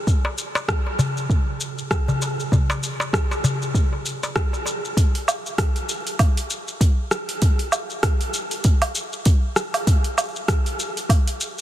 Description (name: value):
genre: downtempo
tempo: 98 BPM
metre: 4/4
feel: swing 57% on 16ths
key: none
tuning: none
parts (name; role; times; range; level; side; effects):
- afro-pop drum kit; drums; 0.1-11.6 s; hi-hat, rim click, shaker, woodblock; -24 LUFS; right 1 dB; small room ambience, soft clipping on snare
- electronic kick drum; drums; 0.1-11.2 s; none; -19 LUFS; equal; small room ambience
- darbuka; percussion; 0.2-4.8 s; none; -25 LUFS; left 1 dB; none
room: light reverb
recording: dense, heavily limited modern master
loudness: -19 LUFS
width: side -13 dB against mid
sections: 0.0-5.0 A section; 5.0-11.6 B section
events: none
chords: none